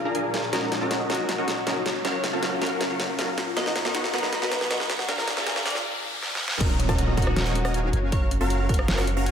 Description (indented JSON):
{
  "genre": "future bass",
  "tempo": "158 BPM",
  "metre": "4/4",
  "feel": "half-time",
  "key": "Eb minor",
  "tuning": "A4 = 436 Hz",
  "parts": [
    { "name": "electric guitar at the edge of break-up", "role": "melody", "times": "0.0-9.3 s", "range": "F4 to D#5", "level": "-33 LUFS", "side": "left 1 dB", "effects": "ensemble chorus, sidechain pumping, ping-pong delay" },
    { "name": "ethereal airy pad", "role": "sustained chords", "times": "0.0-6.6 s", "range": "Bb2 to Gb4", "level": "-39 LUFS", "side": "equal", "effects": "ensemble chorus, built-in reverb, sidechain pumping" },
    { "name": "riser and downlifter", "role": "sound effects", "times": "0.0-9.3 s", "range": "none", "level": "-34 LUFS", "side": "right 1 dB", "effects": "none" },
    { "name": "thumb-piano-like synth pluck", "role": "arpeggios", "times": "0.1-9.3 s", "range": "Db4 to A#5", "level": "-36 LUFS", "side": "left 2 dB", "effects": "none" },
    { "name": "supersaw stab", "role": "riff", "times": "0.1-9.3 s", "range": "B3 to Db6", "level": "-28 LUFS", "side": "equal", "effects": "sidechain pumping, low-pass filter, ping-pong delay" },
    { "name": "dubstep drum kit", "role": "drums", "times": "0.1-9.3 s", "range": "crash cymbal, hi-hat, rim click, snare drum", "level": "-28 LUFS", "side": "equal", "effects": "high-pass filter on snare, high-pass filter on hats, high-pass filter on cymbals, high-pass filter on room" },
    { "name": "long sustained 808-style bass", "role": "bass", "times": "6.6-9.3 s", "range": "Eb1 to Gb1", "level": "-26 LUFS", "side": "equal", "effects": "tube saturation, sidechain pumping" },
    { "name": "electronic kick drum", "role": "drums", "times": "6.6-8.8 s", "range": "none", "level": "-25 LUFS", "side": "equal", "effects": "none" }
  ],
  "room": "wet plate reverb, RT60 2.2 s",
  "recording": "dreamy mix soaked in reverb, high-pass filter",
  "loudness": "-22 LUFS",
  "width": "side -8 dB against mid",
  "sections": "0.0-6.6 A section; 6.6-9.3 B section",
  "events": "build-up 0.0-6.6; drum fill 0.0-5.8, 6.2-6.6; riser 0.0-6.6; filter sweep on supersaw synth 0.0-6.6; filter sweep 0.0-6.6; break 5.8-6.6; drop 6.6-9.3",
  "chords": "0.0 Bb7; 0.5 Ebm7; 1.9 Gbmaj7; 3.6 Bmaj7; 5.1 Bb7; 6.6 Ebm7; 7.9 Gbmaj7"
}